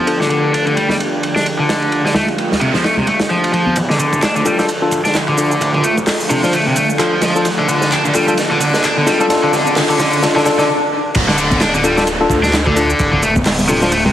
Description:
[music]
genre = breakbeat, breaks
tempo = 130 BPM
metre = 4/4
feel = swing 58% on 16ths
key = D minor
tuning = A4 = 440 Hz
[part]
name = lush unison pad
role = sustained chords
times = 0.0-10.6 s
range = D3 to A4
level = -23 LUFS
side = right 1 dB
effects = chorus, phaser, vintage 12-bit sampler grit, sidechain pumping
[part]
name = cranked stack guitar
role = riff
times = 0.0-14.1 s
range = C3 to D4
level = -16 LUFS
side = equal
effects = overdrive, low-pass filter, tape echo
[part]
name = tine electric piano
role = stabs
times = 0.0-13.9 s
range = D4 to C5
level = -19 LUFS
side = left 2 dB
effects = tape echo
[part]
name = crunchy breakbeat drum kit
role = drums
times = 0.1-14.0 s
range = crash cymbal, hi-hat, kick drum, ride cymbal, snare drum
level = -19 LUFS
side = equal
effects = high-pass filter on kick, high-pass filter on cymbals, high-pass filter on hats, high-pass filter on snare, high-pass filter on room
[part]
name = congas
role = percussion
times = 0.9-3.7, 11.5-14.1 s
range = none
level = -22 LUFS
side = left 1 dB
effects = none
[part]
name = noise sweep, riser, swell and downlifter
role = sound effects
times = 2.3-14.1 s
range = none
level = -26 LUFS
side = right 1 dB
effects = none
[part]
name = phased detuned saw bass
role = bass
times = 3.8-14.1 s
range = D1 to D2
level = -23 LUFS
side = equal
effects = phaser, tube saturation, high-pass filter
[part]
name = electronic shaker and handclaps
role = drums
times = 3.8-14.0 s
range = none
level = -24 LUFS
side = right 1 dB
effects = none
[sound]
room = moderate plate reverb, RT60 1.4 s, small room ambience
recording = heavily compressed radio sound, multiband compression, vinyl crackle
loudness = -12 LUFS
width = side -11 dB against mid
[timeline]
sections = 0.0-3.8 A section; 3.8-11.2 B section; 11.2-14.1 C section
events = noise sweep 2.3-3.8; build-up 3.8-11.2; filter sweep on analog synth pad 3.8-11.2; drum fill 7.5-10.7; swell 10.2-11.2; stop 10.7-11.2; drop 11.2-14.1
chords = 0.0 Dm

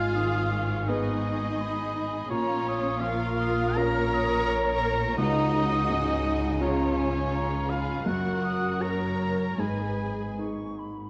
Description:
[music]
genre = cinematic, emotional film score for orchestra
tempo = 74-86 BPM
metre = 4/4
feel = rubato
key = G# dorian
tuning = A4 = 440 Hz
[part]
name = rich studio violin section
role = melody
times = 0.0-10.4 s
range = C#5 to A#5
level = -40 LUFS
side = equal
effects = none
[part]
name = clear oboe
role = second line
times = 0.0-10.4 s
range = C#5 to A#5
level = -34 LUFS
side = equal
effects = none
[part]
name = rich studio violin section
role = second line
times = 0.0-10.4 s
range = E#4 to C#5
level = -39 LUFS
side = equal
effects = none
[part]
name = silver concert flute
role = second line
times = 0.0-11.1 s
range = G#5 to E#6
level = -38 LUFS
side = equal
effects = none
[part]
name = clear concert grand piano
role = accompaniment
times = 0.0-11.1 s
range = C#2 to B4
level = -34 LUFS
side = equal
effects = none
[part]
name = rich studio viola section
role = accompaniment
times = 0.0-10.4 s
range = C#4 to A#4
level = -35 LUFS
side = equal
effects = none
[part]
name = rich studio cello section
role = bass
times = 0.0-10.9 s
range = F#2 to C#3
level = -36 LUFS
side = equal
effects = none
[part]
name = rich studio double bass section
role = bass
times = 0.0-10.9 s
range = F#1 to C#2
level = -36 LUFS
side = equal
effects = none
[sound]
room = wet concert hall reverb, RT60 1.9 s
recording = worn, warbling old tape, cassette tape, warbly pitch drift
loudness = -27 LUFS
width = mono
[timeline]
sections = 0.0-11.1 A section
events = none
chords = 0.0 G#m; 2.3 A#m; 5.2 C#; 8.1 F#; 9.6 G#m

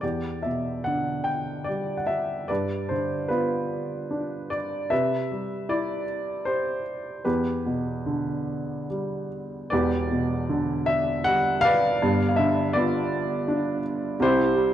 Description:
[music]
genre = classical, lyrical solo piano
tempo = 69-86 BPM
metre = 3/4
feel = rubato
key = E minor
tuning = A4 = 440 Hz
[part]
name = warm upright piano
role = solo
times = 0.0-14.7 s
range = E1 to G5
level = -23 LUFS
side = equal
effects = none
[sound]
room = moderate recital hall reverb, RT60 1.7 s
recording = dark, warm production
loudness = -23 LUFS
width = side -11 dB against mid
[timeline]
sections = 0.0-9.7 A section; 9.7-14.7 A section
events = none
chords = 0.0 Em7; 2.5 G7; 4.9 Cmaj7; 7.2 Em7; 12.0 G7; 14.2 C

